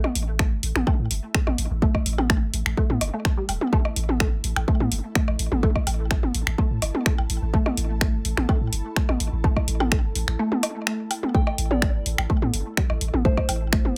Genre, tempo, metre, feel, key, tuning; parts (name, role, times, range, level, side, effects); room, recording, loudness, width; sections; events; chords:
minimal techno; 126 BPM; 4/4; straight; A4 = 440 Hz
electronic toms and percussion blips; percussion; 0.0-13.9 s; -29 LUFS; equal; small room ambience, digital delay
ethereal airy pad; texture; 0.2-14.0 s; E4 to A5; -44 LUFS; equal; ensemble chorus, built-in reverb, phaser, sidechain pumping
punchy sub bass; bass; 0.2-13.9 s; E1 to A2; -28 LUFS; equal; sidechain pumping
house drum kit; drums; 0.2-13.8 s; finger snaps, hi-hat; -29 LUFS; equal; small room ambience
resonant blip pluck; riff; 0.4-13.8 s; G3 to A3; -34 LUFS; equal; phaser, ensemble chorus, sidechain pumping, digital delay
electronic kick drum; drums; 0.4-13.8 s; -25 LUFS; equal; small room ambience
soft synth bell; melody; 11.3-13.9 s; C5 to G5; -34 LUFS; equal; chorus, digital delay
little or no reverb; -23 LUFS; mono
0.0-14.0 A section
fade-in on ambient pad 0.0-14.0; break 10.4-11.3
0.0 A5